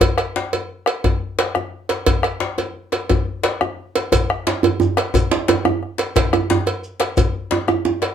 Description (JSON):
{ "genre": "west african traditional, West African drum ensemble", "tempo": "117 BPM (dotted quarters)", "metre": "12/8", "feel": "straight", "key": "none", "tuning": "none", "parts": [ { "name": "bombo", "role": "percussion", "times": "0.0-8.1 s", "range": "none", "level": "-21 LUFS", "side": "left 1 dB", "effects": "none" }, { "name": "cowbell", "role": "percussion", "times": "0.0-8.1 s", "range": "none", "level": "-21 LUFS", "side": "right 4 dB", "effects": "none" }, { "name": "djembe", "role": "percussion", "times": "0.0-8.1 s", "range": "none", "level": "-22 LUFS", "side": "left 5 dB", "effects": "none" }, { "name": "shekere", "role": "percussion", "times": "4.1-7.3 s", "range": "none", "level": "-26 LUFS", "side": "right 1 dB", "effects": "none" }, { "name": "djembe", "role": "percussion", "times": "4.5-8.0 s", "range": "none", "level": "-18 LUFS", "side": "right 5 dB", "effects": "none" } ], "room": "wet small room reverb, RT60 0.5 s", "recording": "heard from further back in the room", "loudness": "-17 LUFS", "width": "side -8 dB against mid", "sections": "0.0-4.1 A section; 4.1-8.1 B section", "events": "none", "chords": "none" }